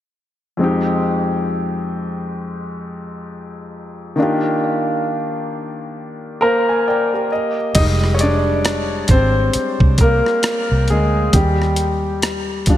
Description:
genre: R&B, neo-soul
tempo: 67 BPM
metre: 4/4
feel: swing 58% on 16ths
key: F dorian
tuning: A4 = 440 Hz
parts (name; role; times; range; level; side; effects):
- clear concert grand piano; accompaniment; 0.6-12.8 s; F2 to Bb5; -18 LUFS; left 1 dB; none
- boom bap sampler-style drum kit; drums; 7.7-12.8 s; crash cymbal, hi-hat, kick drum, rim click; -18 LUFS; equal; none
- vintage muted fingered electric bass; bass; 7.8-12.8 s; F1 to Eb2; -18 LUFS; right 1 dB; none
room: moderate lush hall reverb, RT60 3.0 s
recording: dreamy mix soaked in reverb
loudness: -15 LUFS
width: side -12 dB against mid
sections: 0.6-7.8 A section; 7.8-12.8 B section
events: grand piano fill 6.0-7.8; grand piano solo 7.8-12.8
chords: 0.6 Fm9; 4.2 Ebmaj9; 7.3 N.C.; 7.8 Fmadd9; 11.3 Ebmaj7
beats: | 0.59 1.49 2.38 3.28 | 4.17 5.07 5.96 6.86 | 7.75 8.65 9.54 10.44 | 11.34 12.23

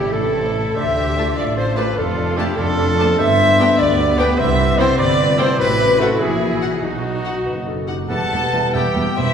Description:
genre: classical, dramatic, fast romantic movement for symphony orchestra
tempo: 92-102 BPM (dotted quarters)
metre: 6/8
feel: rubato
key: E minor from 3.2 s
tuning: A4 = 441 Hz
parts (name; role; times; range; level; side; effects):
- rich studio violin section; melody; 0.0-9.3 s; G4 to A5; -29 LUFS; left 4 dB; none
- rich symphonic violin section; second line; 0.0-9.3 s; E4 to E5; -29 LUFS; equal; none
- warm oboe; second line; 0.0-9.3 s; D#4 to F#5; -28 LUFS; right 1 dB; none
- mellow bassoon; accompaniment; 0.0-9.3 s; G3 to E4; -28 LUFS; right 1 dB; none
- warm symphonic viola section; accompaniment; 0.0-9.3 s; G3 to F#4; -28 LUFS; right 1 dB; none
- mellow French horn section; sustained chords; 0.0-9.3 s; B3 to E5; -21 LUFS; left 1 dB; none
- concert harp; arpeggios; 0.0-9.3 s; E2 to A5; -26 LUFS; left 6 dB; none
- clear trumpet; stabs; 0.0-9.3 s; E4 to E5; -24 LUFS; right 1 dB; none
- rich symphonic cello section; bass; 0.0-9.2 s; E2 to G4; -27 LUFS; equal; none
- warm symphonic double bass section; bass; 0.0-9.3 s; E1 to G2; -24 LUFS; right 2 dB; none
- warm tuba; bass; 0.0-9.3 s; E1 to D2; -26 LUFS; right 2 dB; none
- mellow clarinet; second line; 0.1-9.3 s; F#4 to B4; -30 LUFS; right 1 dB; none
- mellow small flute group; second line; 0.1-9.3 s; F#4 to A5; -28 LUFS; right 1 dB; none
- clear trombone section; sustained chords; 8.1-9.3 s; E3 to G3; -27 LUFS; right 3 dB; none
room: wet scoring stage reverb, RT60 1.8 s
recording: heard from further back in the room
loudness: -15 LUFS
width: side -7 dB against mid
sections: 0.0-8.1 A section; 8.1-9.3 B section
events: none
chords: 0.0 Am; 0.8 Dm; 2.0 Dm/F; 3.2 G; 4.4 Cmaj7; 5.6 F#dim/A; 6.2 F#7/A#; 6.8 B; 8.1 Em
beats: 0.12 | 0.76 1.37 | 1.97 2.58 | 3.20 3.80 | 4.39 4.99 | 5.59 6.20 | 6.83 7.46 | 8.10 8.75

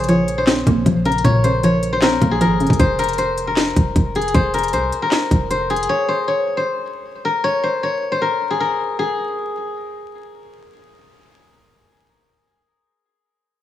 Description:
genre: hip hop, trap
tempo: 155 BPM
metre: 4/4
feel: half-time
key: F minor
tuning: A4 = 439 Hz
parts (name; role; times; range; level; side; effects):
- steel-string zither; melody; 0.0-11.3 s; Ab4 to Db5; -19 LUFS; left 2 dB; low-pass filter, tape echo
- hollow square pluck; accompaniment; 0.0-2.8 s; Bb2 to C4; -18 LUFS; equal; chorus, low-pass filter
- clean 808-style bass; bass; 0.0-5.9 s; F1 to C2; -23 LUFS; equal; none
- trap drum kit; drums; 0.0-5.9 s; handclaps, hi-hat, kick drum, snare drum; -19 LUFS; equal; none
room: light reverb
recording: vinyl crackle, small room ambience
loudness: -16 LUFS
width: side -12 dB against mid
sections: 0.0-2.8 A section; 2.8-9.0 B section; 9.0-12.1 C section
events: none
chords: 0.0 Bbmadd9; 2.8 F5; 5.9 N.C.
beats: 0.09 0.47 0.86 | 1.25 1.64 2.02 2.41 | 2.80 3.18 3.57 3.96 | 4.34 4.73 5.12 5.51 | 5.89 6.28 6.67 7.05 | 7.44 7.83 8.21 8.60 | 8.99 9.38 9.76 10.15 | 10.54 10.93

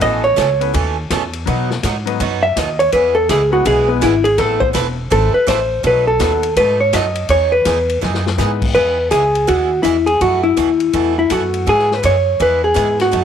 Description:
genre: country, western swing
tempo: 165 BPM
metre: 4/4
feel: swing 63% on 8ths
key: E major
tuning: A4 = 440 Hz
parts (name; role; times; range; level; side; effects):
- vintage hollow-body jazz guitar; melody; 0.0-13.2 s; B3 to E5; -14 LUFS; equal; none
- clear upright piano; accompaniment; 0.0-8.7, 11.3-13.1 s; F#3 to B4; -24 LUFS; left 12 dB; none
- picked swing-style acoustic guitar; accompaniment; 0.0-13.2 s; B2 to B4; -23 LUFS; right 11 dB; none
- upright bass; bass; 0.0-13.2 s; E1 to B2; -20 LUFS; equal; none
- vintage drum kit; drums; 0.0-13.2 s; crash cymbal, hi-hat, kick drum, ride cymbal, snare drum; -25 LUFS; left 4 dB; none
room: moderate spring reverb, RT60 1.3 s, small room ambience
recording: 1960s-style stereo with parts hard left and right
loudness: -13 LUFS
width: side -8 dB against mid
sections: 0.0-8.8 A section; 8.8-13.2 B section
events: hollow-body jazz guitar solo 0.0-8.8; drum fill 8.0-8.4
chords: 0.0 Aadd9; 1.5 B; 2.9 E; 4.4 Amadd9; 5.8 B7; 7.3 Emaj7; 8.8 E; 10.2 B7sus4; 11.7 E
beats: | 0.01 0.38 0.74 1.10 | 1.47 1.83 2.20 2.56 | 2.93 3.29 3.66 4.02 | 4.38 4.75 5.11 5.48 | 5.84 6.20 6.57 6.93 | 7.30 7.66 8.02 8.39 | 8.75 9.12 9.48 9.85 | 10.21 10.57 10.94 11.30 | 11.67 12.03 12.40 12.76 | 13.13

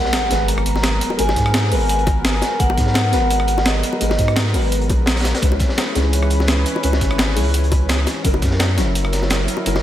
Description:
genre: liquid drum and bass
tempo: 170 BPM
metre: 4/4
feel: straight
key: G# minor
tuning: A4 = 440 Hz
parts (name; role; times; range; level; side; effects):
- vibraphone with medium hard mallets; melody; 0.0-4.3 s; D#5 to A#5; -22 LUFS; equal; diffuse ambient delay
- felt-muted upright piano; accompaniment; 0.0-9.8 s; F#3 to C#5; -25 LUFS; left 1 dB; wide subtle chorus, tape echo
- lush unison pad; sustained chords; 0.0-9.8 s; E3 to B4; -27 LUFS; equal; chorus, sidechain pumping
- sub drop; sound effects; 0.0-1.2 s; none; -29 LUFS; equal; none
- breakbeat sampler-style drum kit; drums; 0.1-9.7 s; hi-hat, rim click, snare drum; -23 LUFS; equal; studio reverb
- crunchy breakbeat drum kit; drums; 0.1-9.8 s; hi-hat, snare drum; -26 LUFS; equal; high-pass filter on hats, studio reverb, high-pass filter on snare, high-pass filter on room
- saturated sub bass; bass; 0.3-9.8 s; F#1 to G#2; -19 LUFS; equal; none
- bongos; percussion; 0.8-9.8 s; none; -28 LUFS; left 4 dB; none
- electronic kick drum; drums; 1.4-8.5 s; none; -19 LUFS; equal; overdrive, studio reverb
room: moderate lush hall reverb, RT60 1.8 s, small room ambience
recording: dreamy mix soaked in reverb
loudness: -15 LUFS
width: side -12 dB against mid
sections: 0.0-9.8 A section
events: impact 0.0-1.2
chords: 0.0 G#m9; 5.4 C#m7; 8.2 F#7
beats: 0.13 0.48 0.83 | 1.19 1.54 1.89 2.25 | 2.60 2.95 3.31 3.66 | 4.01 4.37 4.72 5.07 | 5.42 5.78 6.13 6.48 | 6.83 7.19 7.54 7.89 | 8.25 8.60 8.95 9.31 | 9.66

